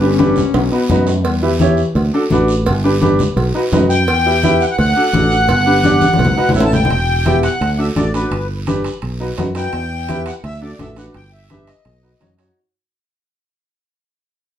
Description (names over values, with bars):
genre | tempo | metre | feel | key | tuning
latin, cumbia | 170 BPM | 4/4 | straight | unclear | A4 = 440 Hz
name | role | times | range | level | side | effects
dark bass clarinet | second line | 0.0-2.1 s | E3 to C#4 | -20 LUFS | left 5 dB | none
bright upright piano | accompaniment | 0.0-12.6 s | B3 to D5 | -17 LUFS | equal | none
fingered electric bass | bass | 0.0-12.5 s | E1 to F#2 | -18 LUFS | right 1 dB | none
congas | percussion | 0.2-12.4 s | none | -19 LUFS | left 2 dB | none
guiro | percussion | 0.2-12.6 s | none | -32 LUFS | right 4 dB | none
cowbell and timbales | percussion | 0.5-12.6 s | none | -24 LUFS | right 3 dB | none
accordion | melody | 3.9-12.3 s | B4 to A5 | -17 LUFS | left 1 dB | light tremolo tuning, slapback echo
room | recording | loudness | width
wet studio ambience, RT60 0.5 s | heard from further back in the room | -12 LUFS | side -10 dB against mid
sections
0.0-6.9 A section; 6.9-12.6 B section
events
drum fill 0.5-1.3, 6.0-6.9; fade-out 6.9-12.6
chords
0.0 G; 0.5 B; 1.3 Em; 2.0 D; 2.7 G; 3.4 B; 4.1 Em; 4.8 D; 5.5 G5; 6.2 B; 6.5 A; 6.9 Em; 7.6 D; 8.3 G; 9.0 B; 9.7 Em; 10.4 D; 11.1 G; 11.9 B